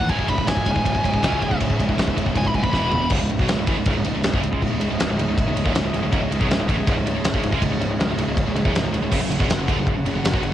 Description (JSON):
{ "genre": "heavy metal", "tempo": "160 BPM", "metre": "4/4", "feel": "straight", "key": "C# minor", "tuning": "A4 = 439 Hz", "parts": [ { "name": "smooth overdriven lead guitar", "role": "melody", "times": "0.0-3.1 s", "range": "G#5 to B5", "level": "-26 LUFS", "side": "equal", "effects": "cassette tape, analog delay" }, { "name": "rich chamber string section", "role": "sustained chords", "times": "0.0-10.5 s", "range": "E3 to F#5", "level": "-31 LUFS", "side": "left 1 dB", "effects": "cassette tape" }, { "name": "heavy high-gain guitar", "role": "riff", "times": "0.0-10.5 s", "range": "C#2 to A3", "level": "-28 LUFS", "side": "left 7 dB", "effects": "distortion, cassette tape" }, { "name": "high-gain distorted guitar", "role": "riff", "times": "0.0-10.5 s", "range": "C#2 to A3", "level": "-26 LUFS", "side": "right 8 dB", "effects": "distortion, cassette tape" }, { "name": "scooped high-gain guitar", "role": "riff", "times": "0.0-10.5 s", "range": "C#2 to E4", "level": "-31 LUFS", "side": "left 1 dB", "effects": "distortion, cassette tape" }, { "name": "fuzz fingered electric bass", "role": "bass", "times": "0.0-10.5 s", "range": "C#1 to D2", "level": "-26 LUFS", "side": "equal", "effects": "overdrive" }, { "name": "big rock drum kit", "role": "drums", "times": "0.0-10.5 s", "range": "crash cymbal, kick drum, ride cymbal, snare drum, toms", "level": "-23 LUFS", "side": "equal", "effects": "cassette tape" } ], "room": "small room ambience", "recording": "home recording on cassette", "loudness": "-18 LUFS", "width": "side -12 dB against mid", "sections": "0.0-3.1 A section; 3.1-10.5 B section", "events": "lead electric guitar solo 0.0-3.1; drum fill 2.7-3.1", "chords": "0.1 C#m; 2.7 E5; 3.1 C#m; 9.1 F#5" }